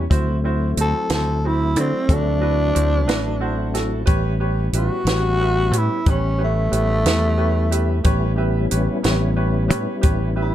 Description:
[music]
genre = slow blues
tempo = 60 BPM (dotted quarters)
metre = 12/8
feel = straight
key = A mixolydian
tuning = A4 = 438 Hz
[part]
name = growling tenor saxophone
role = melody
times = 0.0-10.5 s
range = A3 to A4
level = -22 LUFS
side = equal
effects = none
[part]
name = bright upright piano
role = accompaniment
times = 0.0-10.5 s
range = E4 to A5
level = -26 LUFS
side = right 3 dB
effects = none
[part]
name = tonewheel organ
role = sustained chords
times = 0.0-10.5 s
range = F#3 to E4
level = -28 LUFS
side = left 2 dB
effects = slow rotary speaker, chorus vibrato
[part]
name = fingered electric bass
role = bass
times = 0.0-10.5 s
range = A1 to D3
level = -20 LUFS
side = equal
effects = none
[part]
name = compact cocktail drum kit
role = drums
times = 0.1-10.2 s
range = hi-hat, kick drum, snare drum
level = -20 LUFS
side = equal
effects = none
[sound]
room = light reverb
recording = dark, warm production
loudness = -17 LUFS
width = side -12 dB against mid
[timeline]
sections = 0.0-10.5 A section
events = tenor saxophone solo 0.0-10.5; upright piano fill 3.1-4.1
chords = 0.1 D9; 4.1 A9

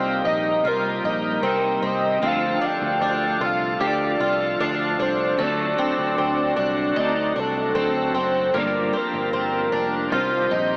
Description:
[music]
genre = dream pop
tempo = 76 BPM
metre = 4/4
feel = straight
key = unclear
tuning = A4 = 441 Hz
[part]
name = warm velvety synth lead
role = melody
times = 0.0-10.8 s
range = A4 to G5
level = -26 LUFS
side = equal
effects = chorus, digital delay
[part]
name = clean electric guitar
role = accompaniment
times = 0.0-10.8 s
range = G2 to Bb4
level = -33 LUFS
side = equal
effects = tremolo, ensemble chorus
[part]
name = bright tonewheel organ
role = sustained chords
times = 0.0-10.8 s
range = C3 to A4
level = -31 LUFS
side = equal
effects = slow rotary speaker
[part]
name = fingerpicked twelve-string acoustic guitar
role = arpeggios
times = 0.0-10.8 s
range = A3 to G4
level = -27 LUFS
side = equal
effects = analog chorus, digital delay
[part]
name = picked electric bass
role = bass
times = 0.0-10.8 s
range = F1 to D2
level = -34 LUFS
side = equal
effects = none
[sound]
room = wet huge ambient reverb, RT60 8.1 s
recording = AM radio sound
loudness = -22 LUFS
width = mono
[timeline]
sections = 0.0-10.8 A section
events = none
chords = 0.0 Cm7; 2.2 Dm; 5.4 D7; 8.5 Gm7; 10.1 Cm

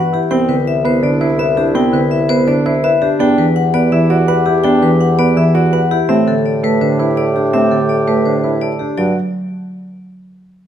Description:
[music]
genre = classical, minimalist pattern music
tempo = 166 BPM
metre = 4/4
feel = straight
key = G major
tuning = A4 = 439 Hz
[part]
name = vibraphone with hard mallets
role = melody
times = 0.0-9.1 s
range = G4 to G5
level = -18 LUFS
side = left 9 dB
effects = none
[part]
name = dark clarinet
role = second line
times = 0.0-8.8 s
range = E4 to G4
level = -22 LUFS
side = right 4 dB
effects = none
[part]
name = warm concert grand piano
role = arpeggios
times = 0.0-9.2 s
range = C4 to B4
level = -18 LUFS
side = right 4 dB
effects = none
[part]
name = mellow bassoon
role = bass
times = 0.0-9.1 s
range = C2 to A2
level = -20 LUFS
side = equal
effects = none
[part]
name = marimba with medium mallets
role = accompaniment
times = 0.3-9.1 s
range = D3 to B3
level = -16 LUFS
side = right 2 dB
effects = none
[sound]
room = light reverb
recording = close, detailed microphones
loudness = -11 LUFS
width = side -9 dB against mid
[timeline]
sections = 0.0-9.0 A section; 9.0-10.4 B section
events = none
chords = 0.3 Cmaj7; 3.2 Em7; 6.1 Am9; 9.0 G5

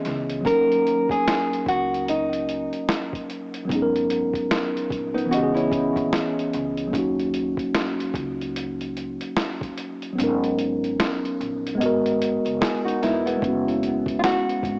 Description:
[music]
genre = lo-fi hip hop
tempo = 74 BPM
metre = 4/4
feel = swing 58% on 16ths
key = G# minor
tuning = A4 = 439 Hz
[part]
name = nylon-string guitar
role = second line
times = 0.0-0.2, 5.1-6.7, 12.6-13.6 s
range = G#3 to G#4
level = -31 LUFS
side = equal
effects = low-pass filter, tape echo
[part]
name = mellow tine electric piano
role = accompaniment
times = 0.0-14.8 s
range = E3 to D#5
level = -26 LUFS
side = equal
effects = cassette tape, low-pass filter
[part]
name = upright bass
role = bass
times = 0.1-14.8 s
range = E1 to D#2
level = -38 LUFS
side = equal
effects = none
[part]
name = lo-fi sampler-style drum kit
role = drums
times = 0.1-14.8 s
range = hi-hat, kick drum, snare drum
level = -30 LUFS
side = equal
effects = none
[part]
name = nylon-string guitar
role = melody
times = 0.5-3.3, 13.0-14.8 s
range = D#4 to A#4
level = -26 LUFS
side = equal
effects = low-pass filter
[sound]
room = moderate plate reverb, RT60 3.1 s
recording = worn, warbling old tape, cassette tape, warbly pitch drift, small speaker sound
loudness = -24 LUFS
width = mono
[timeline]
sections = 0.0-13.4 A section; 13.4-14.8 B section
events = kick muted 10.2-13.4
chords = 0.4 D#m7; 3.7 G#m11; 5.3 C#m7; 6.9 D#m7; 10.2 G#m11; 11.8 G#m9; 13.4 F#7sus4

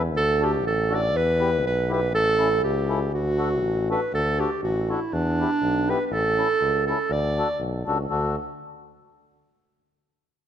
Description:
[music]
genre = alpine folk, alpine dance band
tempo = 120 BPM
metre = 2/4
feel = swing 54% on 8ths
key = D major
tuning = A4 = 440 Hz
[part]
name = mellow accordion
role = accompaniment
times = 0.0-8.4 s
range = B3 to A4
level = -30 LUFS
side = left 3 dB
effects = none
[part]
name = clear tuba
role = bass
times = 0.0-8.4 s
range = A1 to E2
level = -27 LUFS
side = left 1 dB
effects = none
[part]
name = warm clarinet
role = melody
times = 0.2-7.6 s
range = D4 to D5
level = -23 LUFS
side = right 2 dB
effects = none
[sound]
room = light reverb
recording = dark, warm production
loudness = -21 LUFS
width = side -9 dB against mid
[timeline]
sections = 0.0-4.1 A section; 4.1-8.1 B section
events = none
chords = 0.1 D; 1.1 Em; 2.1 A; 3.1 D; 5.1 Em; 6.1 A; 7.1 D

